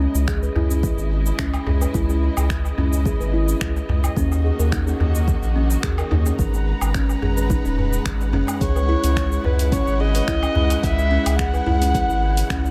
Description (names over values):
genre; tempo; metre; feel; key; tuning
organic downtempo; 108 BPM; 4/4; swing 53% on 16ths; C# dorian; A4 = 440 Hz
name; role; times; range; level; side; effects
rich symphonic string section; sustained chords; 0.0-12.7 s; C#3 to A#5; -33 LUFS; equal; sidechain pumping
buzzing kalimba; arpeggios; 0.0-12.6 s; C#4 to B4; -28 LUFS; equal; low-pass filter, tape echo
round analog bass; bass; 0.0-12.7 s; D#1 to D#2; -23 LUFS; equal; sidechain pumping
darbuka; percussion; 0.1-12.7 s; none; -32 LUFS; equal; none
deep house drum kit; drums; 0.2-12.7 s; cabasa, finger snaps, hi-hat, woodblock; -33 LUFS; equal; analog delay
electronic kick drum; drums; 0.3-12.6 s; none; -27 LUFS; equal; none
dark kamancheh; melody; 8.6-12.7 s; B4 to F#5; -26 LUFS; equal; tape echo
wind-like tuned noise texture; texture; 9.4-12.7 s; F#5; -41 LUFS; equal; none
room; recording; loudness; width
light reverb, studio ambience; echo-heavy mix; -20 LUFS; mono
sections
0.0-12.7 A section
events
filter sweep on kalimba 0.0-12.7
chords
0.0 C#m; 4.2 D#m7; 6.4 G#m9; 8.6 C#m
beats
0.28 0.83 1.39 | 1.95 2.50 3.06 3.61 | 4.17 4.72 5.28 5.83 | 6.39 6.95 7.50 8.06 | 8.61 9.17 9.72 10.28 | 10.84 11.39 11.95 12.50